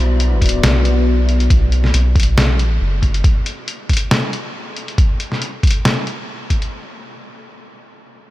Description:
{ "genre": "deep dubstep", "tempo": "138 BPM", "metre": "4/4", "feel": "swing 53% on 16ths, half-time", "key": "B minor", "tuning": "A4 = 440 Hz", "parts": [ { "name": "dark analog pad", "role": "sustained chords", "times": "0.0-1.5 s", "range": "B3 to D5", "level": "-24 LUFS", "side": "left 2 dB", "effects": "chorus" }, { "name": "soft dub sub bass", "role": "bass", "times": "0.0-3.2 s", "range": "F#1 to B1", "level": "-15 LUFS", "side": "equal", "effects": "none" }, { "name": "trip hop sampler-style drum kit", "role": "drums", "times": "0.2-6.7 s", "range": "hi-hat, snare drum", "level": "-20 LUFS", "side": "equal", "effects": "none" }, { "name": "electronic kick drum", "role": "drums", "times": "0.4-6.6 s", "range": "none", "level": "-14 LUFS", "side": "equal", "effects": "none" } ], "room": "light reverb", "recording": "none", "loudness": "-14 LUFS", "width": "side -16 dB against mid", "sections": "0.0-6.7 A section; 6.7-8.3 B section", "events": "none", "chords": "0.0 Bm; 3.2 N.C." }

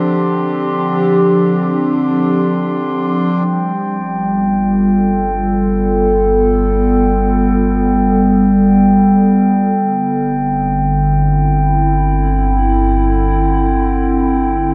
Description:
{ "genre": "ambient", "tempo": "free time", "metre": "none", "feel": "none", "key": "unclear", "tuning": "A4 = 441 Hz", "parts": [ { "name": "warbly tape-like pad", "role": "sustained chords", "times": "0.0-14.7 s", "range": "D3 to A4", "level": "-16 LUFS", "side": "equal", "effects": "chorus, built-in reverb" }, { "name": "hand-pumped harmonium", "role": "drone", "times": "0.0-3.4 s", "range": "D3 to D4", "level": "-26 LUFS", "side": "equal", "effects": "none" }, { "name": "glass harmonica", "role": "texture", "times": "0.0-14.7 s", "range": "G5 to C6", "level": "-23 LUFS", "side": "equal", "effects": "none" }, { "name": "deep rumbling drone", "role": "bass", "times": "3.3-14.7 s", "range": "G1", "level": "-21 LUFS", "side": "equal", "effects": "built-in reverb, tube saturation" } ], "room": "wet cathedral reverb, RT60 5.6 s", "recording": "in a vast, echoing space", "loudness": "-14 LUFS", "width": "mono", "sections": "0.0-3.3 A section; 3.3-14.7 B section", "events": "none", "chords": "0.0 G7sus4; 3.3 G9; 9.8 Cadd9/G" }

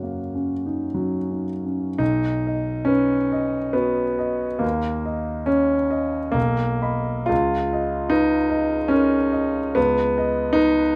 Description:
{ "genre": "classical, impressionist solo piano", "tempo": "54-78 BPM", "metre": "3/4", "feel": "rubato", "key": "B lydian", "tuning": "A4 = 440 Hz", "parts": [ { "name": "clear grand piano", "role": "solo", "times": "0.0-11.0 s", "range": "B1 to B5", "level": "-22 LUFS", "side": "equal", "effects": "none" } ], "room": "light reverb", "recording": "close, detailed microphones", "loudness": "-22 LUFS", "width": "mono", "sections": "0.0-2.0 A section; 2.0-11.0 B section", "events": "none", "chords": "0.0 Gb6; 2.0 B; 4.6 D#5; 6.4 Bmaj7; 7.3 C#13; 9.8 B/C#" }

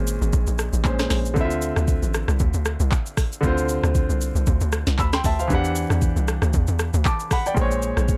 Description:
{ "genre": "amapiano", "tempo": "116 BPM", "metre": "4/4", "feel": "swing 55% on 16ths", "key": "unclear", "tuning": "A4 = 439 Hz", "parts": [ { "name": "clear grand piano", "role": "accompaniment", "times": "0.0-8.2 s", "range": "Bb2 to E6", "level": "-28 LUFS", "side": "equal", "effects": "none" }, { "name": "tight log drum bass", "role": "bass", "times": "0.0-8.2 s", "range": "Ab1 to E2", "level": "-25 LUFS", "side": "equal", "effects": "none" }, { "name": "smooth R&B drum kit", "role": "drums", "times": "0.1-8.2 s", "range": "handclaps, hi-hat, kick drum, rim click, shaker, snare drum", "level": "-26 LUFS", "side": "equal", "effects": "none" } ], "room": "little or no reverb", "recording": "dark, warm production", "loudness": "-22 LUFS", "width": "mono", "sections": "0.0-8.2 A section", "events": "none", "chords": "0.0 Bbm9; 1.4 Dm9; 5.5 Em9; 7.6 Bbm9" }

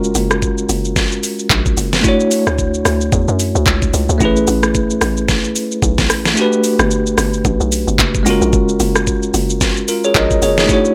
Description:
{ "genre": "amapiano", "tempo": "111 BPM", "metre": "4/4", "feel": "swing 58% on 16ths", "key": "unclear", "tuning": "A4 = 440 Hz", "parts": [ { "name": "bell-like tine electric piano", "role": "accompaniment", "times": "0.0-10.9 s", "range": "G#3 to Eb5", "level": "-18 LUFS", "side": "equal", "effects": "none" }, { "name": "hollow log drum bass", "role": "bass", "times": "0.0-10.7 s", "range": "F#1 to F#2", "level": "-21 LUFS", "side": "equal", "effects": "none" }, { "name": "smooth R&B drum kit", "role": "drums", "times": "0.0-10.9 s", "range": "handclaps, hi-hat, kick drum, rim click, shaker, snare drum", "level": "-19 LUFS", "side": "equal", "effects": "none" } ], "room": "digital ambience", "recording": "none", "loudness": "-15 LUFS", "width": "mono", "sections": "0.0-10.9 A section", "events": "kick muted 6.4-7.4", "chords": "0.0 F#maj9; 2.0 Dmaj9; 4.2 Amaj9; 6.4 Gmaj9; 8.3 F#maj9" }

